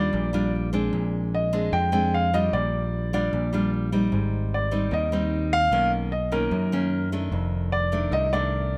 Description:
bossa nova; 150 BPM; 4/4; straight; Eb major; A4 = 441 Hz
warm grand piano; melody; 0.0-8.8 s; A#4 to G5; -28 LUFS; equal
nylon-string guitar; accompaniment; 0.0-8.8 s; F2 to F4; -29 LUFS; equal
picked electric bass; bass; 0.0-8.8 s; F1 to F#2; -29 LUFS; equal
little or no reverb; close, detailed microphones; -24 LUFS; mono
0.0-8.8 A section
0.0 Ebmaj9; 0.9 Bb9; 2.5 Ebmaj9/Bb (rootless); 4.1 Abmaj7; 5.7 Bmaj9; 7.3 F6
0.13 0.53 | 0.93 1.33 1.73 2.13 | 2.53 2.93 3.33 3.72 | 4.12 4.52 4.92 5.32 | 5.72 6.12 6.52 6.92 | 7.31 7.71 8.11 8.51

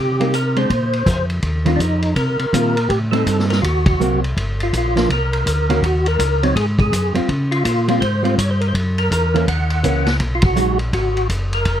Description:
soul jazz organ trio; 164 BPM; 4/4; swing 63% on 8ths; A4 = 440 Hz
percussive tonewheel organ; melody; 0.0-11.8 s; D4 to Gb5; -21 LUFS; equal; slow rotary speaker, overdrive, chorus vibrato
mellow tonewheel organ; bass; 0.0-11.8 s; F1 to Db3; -19 LUFS; equal; slow rotary speaker
hollow-body jazz guitar; accompaniment; 0.2-10.8 s; Eb3 to Gb4; -19 LUFS; right 1 dB
vintage drum kit; drums; 0.2-11.8 s; crash cymbal, hi-hat, kick drum, ride cymbal, rim click, snare drum; -22 LUFS; equal
little or no reverb; close, detailed microphones; -15 LUFS; side -10 dB against mid
0.0-1.4 A section; 1.4-11.8 B section
band accent 3.8, 10.4
0.0 Cm7; 0.7 Bbsus2; 1.4 Eb69; 2.9 Am7b5; 3.6 Cm7b5; 4.4 Gm7; 5.8 Ebm7; 6.5 Ab7; 7.3 Dbmaj7#11; 8.7 Gb7; 10.2 B6
0.33 0.69 1.06 | 1.42 1.79 2.16 2.52 | 2.89 3.26 3.62 3.99 | 4.35 4.72 5.09 5.45 | 5.82 6.18 6.55 6.92 | 7.28 7.65 8.01 8.38 | 8.74 9.11 9.47 9.84 | 10.20 10.57 10.93 11.30 | 11.66

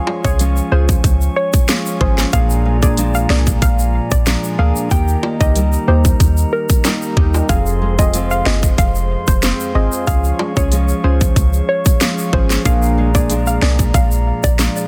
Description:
dancehall; 93 BPM; 4/4; straight; A4 = 440 Hz
percussive organ stab; accompaniment; 0.0-13.8 s; Bb3 to Ab4; -26 LUFS; equal; chorus, phaser, sidechain pumping
glass harmonica; sustained chords; 0.0-14.9 s; F4 to Db6; -30 LUFS; equal; sidechain pumping
nylon-string guitar; arpeggios; 0.0-14.9 s; F2 to Eb4; -25 LUFS; equal
timbales and egg shaker; percussion; 0.1-14.9 s; -29 LUFS; equal
soft round pluck; melody; 0.2-14.5 s; Bb4 to G5; -25 LUFS; equal; chorus, delay
clean 808-style bass; bass; 0.2-14.7 s; F1 to Eb2; -18 LUFS; equal
island pop drum kit; drums; 0.2-14.7 s; hi-hat, kick drum, snare drum; -18 LUFS; equal
small room ambience; dense, heavily limited modern master; -15 LUFS; mono
0.0-14.9 A section
0.0 Db; 2.3 Bb7; 4.9 Eb; 7.5 Fm; 10.1 Db; 12.7 Bb7
0.40 1.04 1.69 | 2.33 2.98 3.62 4.27 | 4.91 5.56 6.20 6.85 | 7.49 8.14 8.78 9.43 | 10.07 10.72 11.36 12.01 | 12.65 13.30 13.95 14.59

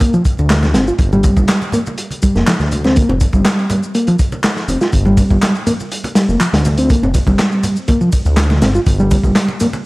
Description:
breakbeat, breaks; 122 BPM; 4/4; straight; G minor; A4 = 440 Hz
mellow reed electric piano; riff; 0.0-9.7 s; F3 to F4; -16 LUFS; equal; fast tremolo, overdrive, tape echo
crunchy breakbeat drum kit; drums; 0.0-9.7 s; hi-hat, kick drum, snare drum; -16 LUFS; equal
garage drum kit; drums; 0.0-9.8 s; handclaps, ride cymbal, shaker; -24 LUFS; equal
congas; percussion; 0.0-9.8 s; -24 LUFS; right 1 dB
dark detuned saw bass; bass; 0.4-9.3 s; F1 to D2; -16 LUFS; equal
light reverb, small room reverb; dry, gritty hardware recording, vinyl crackle; -12 LUFS; side -22 dB against mid
0.0-9.9 A section
0.0 G5
0.01 0.50 | 1.00 1.49 1.98 2.47 | 2.96 3.46 3.95 4.44 | 4.93 5.42 5.91 6.41 | 6.90 7.39 7.88 8.37 | 8.87 9.36

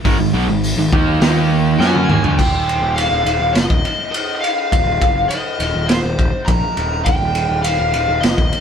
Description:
hard rock; 102 BPM; 4/4; straight; A4 = 440 Hz
overdriven semi-hollow guitar; riff; 0.0-2.4 s; Ab2 to Gb4; -17 LUFS; right 1 dB
raw garage drum kit; drums; 0.0-8.6 s; crash cymbal, hi-hat, kick drum, ride cymbal, snare drum, toms; -18 LUFS; equal
fuzz picked electric bass; bass; 0.1-8.5 s; Eb1 to Gb2; -20 LUFS; equal; overdrive
lead guitar through a small cranked amp; melody; 1.8-8.6 s; C5 to Bb5; -19 LUFS; left 1 dB; overdrive
light reverb; band playing live in one room; -14 LUFS; side -7 dB against mid
0.0-2.4 A section; 2.4-8.6 B section
drum fill 1.8-2.4
0.0 Ab5; 1.2 Eb5; 1.8 Ab5; 2.4 N.C.
| 0.04 0.63 1.21 1.79 | 2.38 2.96 3.54 4.13 | 4.71 5.30 5.89 6.47 | 7.06 7.64 8.23

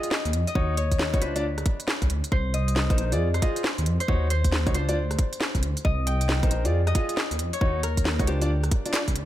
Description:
UK garage, two-step garage; 136 BPM; 4/4; swing 64% on 16ths; A4 = 438 Hz
Celtic harp; melody; 0.0-9.3 s; G4 to G5; -32 LUFS; left 4 dB; digital delay
warm grand piano; stabs; 0.0-9.0 s; D4 to Eb5; -31 LUFS; equal; digital delay
garage drum kit; drums; 0.0-9.3 s; handclaps, hi-hat, rim click, snare drum; -29 LUFS; equal
dark detuned saw bass; bass; 0.3-9.3 s; Bb1 to F2; -25 LUFS; equal
electronic kick drum; drums; 0.6-9.1 s; -25 LUFS; equal
digital ambience; -22 LUFS; side -13 dB against mid
0.0-9.3 A section
drum fill 8.9-9.3
0.0 F7(no3); 0.6 Ebm7; 1.2 Dm7; 2.3 Cm7; 3.2 Fm7; 4.1 Ebm7; 4.7 Dm7; 5.8 Cm7; 6.7 Fm7; 7.6 Ebm7; 8.3 Dm7
0.11 | 0.55 0.99 1.44 1.88 | 2.32 2.76 3.20 3.64 | 4.08 4.52 4.97 5.41 | 5.85 6.29 6.73 7.17 | 7.61 8.05 8.49 8.94

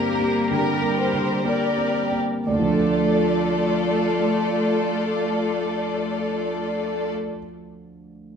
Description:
cinematic; 58-68 BPM; 4/4; rubato; D minor; A4 = 441 Hz
warm symphonic violin section; second line; 0.0-7.1 s; G4 to D5; -24 LUFS; left 1 dB
clear symphonic viola section; accompaniment; 0.0-7.1 s; G3 to Bb4; -26 LUFS; left 3 dB
warm grand piano; accompaniment; 0.0-8.4 s; D2 to D5; -25 LUFS; right 2 dB
wet recital hall reverb, RT60 1.5 s; dark, warm production; -20 LUFS; side -7 dB against mid
0.0-2.5 A section; 2.5-6.5 B section
slowing down 0.0-2.5
0.0 Gm; 2.5 Dm
0.52 1.46 | 2.47 3.49 4.50 5.52

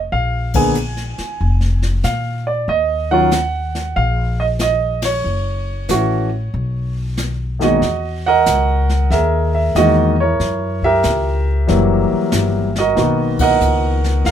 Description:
jazz piano trio; 93 BPM; 4/4; swing 67% on 8ths; A4 = 442 Hz
upright bass; bass; 0.0-14.3 s; F1 to Bb2; -19 LUFS; left 1 dB
warm concert grand piano; melody; 0.1-14.3 s; Fb2 to Ab5; -16 LUFS; right 2 dB
jazz brush drum kit; drums; 0.1-14.3 s; brushed snare drum, hi-hat, kick drum, ride cymbal, snare drum; -25 LUFS; left 2 dB
light reverb; minimal, uncompressed stereo recording; -14 LUFS; side -9 dB against mid
0.0-7.8 A section; 7.8-14.3 B section
band accent 0.4-0.8, 4.9-5.2, 13.3-13.6
0.1 Bb7(no3); 2.7 Ebmadd9; 5.2 Gbm7; 6.5 B; 7.8 Emaj9#11; 10.4 Gb7b9; 13.0 Bmaj7
| 0.12 0.76 1.40 2.04 | 2.68 3.32 3.96 4.60 | 5.25 5.89 6.53 7.17 | 7.82 8.46 9.11 9.75 | 10.39 11.04 11.68 12.32 | 12.96 13.61 14.25

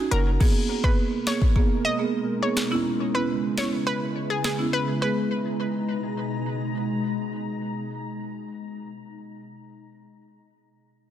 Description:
dancehall; 104 BPM; 4/4; straight; G# minor; A4 = 442 Hz
marimba with medium mallets; accompaniment; 0.0-8.8 s; G#3 to G#4; -27 LUFS; right 4 dB
analog pluck; melody; 0.1-6.7 s; G#4 to D#5; -30 LUFS; left 1 dB; chorus, tape echo
afro-pop drum kit; drums; 0.1-4.6 s; crash cymbal, hi-hat, kick drum, rim click, snare drum; -23 LUFS; equal
glassy FM pad; sustained chords; 1.1-8.1 s; B2 to A#5; -30 LUFS; left 2 dB; ensemble chorus, built-in reverb, sidechain pumping
light reverb, digital ambience; dense, heavily limited modern master; -23 LUFS; side -11 dB against mid
0.4-5.0 A section; 5.0-7.3 B section
kick muted 3.9-5.0
0.4 G#madd9; 2.7 C#m7; 5.0 G#madd9
| 0.41 0.98 1.56 2.14 | 2.71 3.29 3.87 4.44 | 5.02 5.60 6.17 6.75

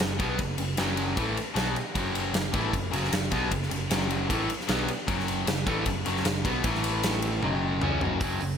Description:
hard rock; 154 BPM; 4/4; straight; F# minor; A4 = 440 Hz
crunchy overdriven guitar; riff; 0.0-8.6 s; F#2 to C#4; -31 LUFS; right 8 dB; lush chorus
overdriven semi-hollow guitar; riff; 0.0-8.6 s; F#2 to C#4; -31 LUFS; left 9 dB
picked electric bass; bass; 0.0-8.6 s; F#1 to C#2; -33 LUFS; equal
big rock drum kit; drums; 0.0-8.5 s; hi-hat, kick drum, ride cymbal, snare drum, toms; -29 LUFS; equal; gated reverb
light reverb, small room ambience; bright 1980s-style digital production; -25 LUFS; side -7 dB against mid
0.0-8.2 A section
drum fill 7.4-8.2
0.0 F#m; 6.6 A5; 7.4 F#5
0.01 | 0.40 0.79 1.18 1.57 | 1.96 2.35 2.74 3.13 | 3.52 3.91 4.30 4.69 | 5.08 5.47 5.86 6.25 | 6.65 7.04 7.43 7.82 | 8.21

